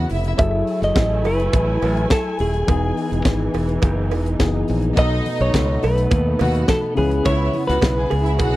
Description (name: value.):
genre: disco.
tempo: 105 BPM.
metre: 4/4.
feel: straight.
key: F# dorian.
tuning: A4 = 440 Hz.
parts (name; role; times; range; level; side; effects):
rich studio string section; second line; 0.0-0.4, 5.0-8.6 s; D#4 to G#5; -27 LUFS; right 2 dB; none.
barky tine electric piano; accompaniment; 0.0-8.6 s; B2 to B4; -25 LUFS; left 3 dB; overdrive.
dark studio string section; sustained chords; 0.0-8.6 s; C#3 to G#5; -28 LUFS; right 1 dB; none.
modern bright fingered electric bass; bass; 0.0-8.6 s; D#1 to D#2; -21 LUFS; equal; none.
tight funk drum kit; drums; 0.1-8.5 s; hi-hat, kick drum, snare drum; -19 LUFS; equal; none.
clean electric guitar; melody; 0.4-8.6 s; G#4 to E5; -22 LUFS; equal; tremolo, slapback echo.
cowbell; percussion; 0.4-8.5 s; none; -30 LUFS; right 12 dB; none.
congas; percussion; 5.3-8.2 s; none; -29 LUFS; left 3 dB; none.
room: little or no reverb.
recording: dry, close 1970s-style studio recording.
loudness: -16 LUFS.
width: side -16 dB against mid.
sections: 0.0-8.6 A section.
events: none.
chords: 0.4 F#m9; 2.7 Emaj7; 5.0 B7; 7.0 C#m7.